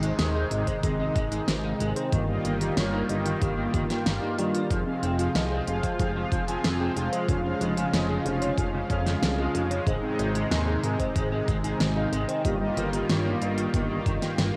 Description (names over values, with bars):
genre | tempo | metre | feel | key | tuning
synthwave | 93 BPM | 4/4 | straight | unclear | A4 = 443 Hz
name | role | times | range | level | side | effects
warm analog pad | sustained chords | 0.0-14.6 s | C3 to F4 | -33 LUFS | equal | chorus, sidechain pumping, cassette tape
thumb-piano-like synth pluck | arpeggios | 0.0-14.5 s | Eb3 to Db5 | -38 LUFS | equal | none
electric guitar at the edge of break-up | riff | 0.0-14.6 s | Db3 to Eb4 | -38 LUFS | equal | ensemble chorus, cassette tape, tape echo
mellow synth brass | stabs | 0.0-14.6 s | G2 to Ab5 | -33 LUFS | equal | chorus, cassette tape, tape echo
chorused synth bass | bass | 0.0-14.5 s | F1 to G2 | -32 LUFS | equal | none
pop drum kit | drums | 0.0-14.5 s | hi-hat, snare drum | -34 LUFS | equal | studio reverb, cassette tape
impact | sound effects | 0.3-2.1 s | none | barely audible | none | none
electronic kick drum | drums | 0.7-14.2 s | none | -31 LUFS | equal | studio reverb, cassette tape
room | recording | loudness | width
moderate spring reverb, RT60 2.2 s | home recording on cassette | -27 LUFS | mono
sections
0.0-14.6 A section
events
impact 0.0-2.1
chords
0.0 Ab; 2.1 Ebadd9/G; 4.7 Fm; 7.3 Db/F; 9.9 Ab; 12.4 Ebadd9/G